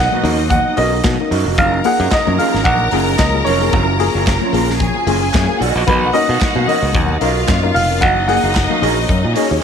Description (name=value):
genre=disco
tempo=112 BPM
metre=4/4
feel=swing 56% on 16ths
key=F# major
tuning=A4 = 439 Hz
part: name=clear baby grand piano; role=melody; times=0.0-8.8 s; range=B4 to F#5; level=-18 LUFS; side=right 1 dB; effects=none
part: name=clear studio string section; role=second line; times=0.0-9.6 s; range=C#4 to A#5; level=-21 LUFS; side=left 1 dB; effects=none
part: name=mellow electric guitar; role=accompaniment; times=0.0-9.6 s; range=C#4 to E#5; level=-23 LUFS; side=right 12 dB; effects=none
part: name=reed electric piano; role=accompaniment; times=0.0-9.6 s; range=B2 to A#4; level=-22 LUFS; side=left 13 dB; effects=fast tremolo
part: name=mellow French horn section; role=sustained chords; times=0.0-9.6 s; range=D#3 to E#4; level=-26 LUFS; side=right 1 dB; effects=stereo widening
part: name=modern bright fingered electric bass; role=bass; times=0.0-9.6 s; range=E#1 to B2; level=-18 LUFS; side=equal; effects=none
part: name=congas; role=percussion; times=0.1-9.3 s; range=none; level=-27 LUFS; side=left 15 dB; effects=none
part: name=modern studio drum kit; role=drums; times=0.2-9.5 s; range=hi-hat, kick drum, snare drum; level=-20 LUFS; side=equal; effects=none
part: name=group handclap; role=percussion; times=1.0-8.7 s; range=none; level=-31 LUFS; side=right 12 dB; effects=none
room=light reverb, studio reverb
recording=1960s-style stereo with parts hard left and right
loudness=-12 LUFS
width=side -7 dB against mid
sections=0.0-9.6 A section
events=none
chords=0.0 Bmaj7; 1.6 F#maj7; 5.6 Bmaj7; 8.0 F#6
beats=0.51 1.04 | 1.58 2.12 2.65 3.19 | 3.73 4.26 4.80 5.34 | 5.87 6.41 6.95 7.48 | 8.02 8.56 9.09 9.63